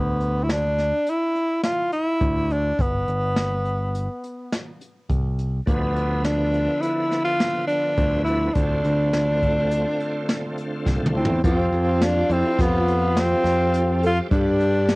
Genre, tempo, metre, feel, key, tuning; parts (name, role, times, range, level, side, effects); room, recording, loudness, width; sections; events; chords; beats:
progressive instrumental, band music in an uneven meter; 104 BPM; 5/4; straight; D dorian; A4 = 440 Hz
clear tenor saxophone; melody; 0.0-15.0 s; B3 to F4; -23 LUFS; equal; cassette tape
modern bright picked electric bass; bass; 0.0-15.0 s; G1 to G2; -23 LUFS; equal
jazz brush drum kit; drums; 0.2-15.0 s; hi-hat, kick drum, snare drum, toms; -25 LUFS; equal; cassette tape
bright tonewheel organ; accompaniment; 5.7-15.0 s; D3 to E5; -29 LUFS; equal; chorus vibrato, slow rotary speaker, cassette tape
hollow alto flute; second line; 11.2-15.0 s; E4 to A4; -25 LUFS; left 1 dB; cassette tape
light reverb; home recording on cassette; -19 LUFS; side -24 dB against mid
0.0-11.4 A section; 11.4-15.0 B section
drum fill 10.9-11.4
0.0 Dsus2; 2.8 G; 5.7 Dm69; 8.6 Dm7; 11.4 Fadd9; 14.3 Gadd9
0.49 1.07 1.65 2.22 | 2.80 3.37 3.95 4.53 5.10 | 5.68 6.25 6.83 7.41 7.98 | 8.56 9.13 9.71 10.29 10.86 | 11.44 12.01 12.59 13.16 13.74 | 14.31 14.89